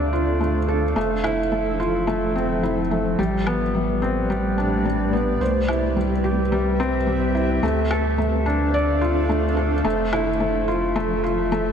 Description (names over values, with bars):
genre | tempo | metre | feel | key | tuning
piano and strings electronica | 108 BPM | 4/4 | straight | unclear | A4 = 437 Hz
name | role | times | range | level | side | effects
granular cloud pad | sustained chords | 0.0-11.7 s | F3 to F5 | -26 LUFS | equal | built-in reverb
felt-muted upright piano | riff | 0.0-11.7 s | G3 to D5 | -21 LUFS | left 1 dB | ping-pong delay
warm sub bass | bass | 0.0-11.7 s | F1 to D2 | -26 LUFS | right 1 dB | tube saturation
woodblock | drums | 1.2-10.2 s | none | -31 LUFS | left 2 dB | studio reverb
room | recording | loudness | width
moderate lush hall reverb, RT60 2.4 s | none | -19 LUFS | side -7 dB against mid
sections
0.0-11.7 A section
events
none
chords
0.0 Dm7; 1.0 Fmaj7; 3.2 Am11; 5.4 Cmaj7; 7.6 Dm7; 9.9 Fmaj7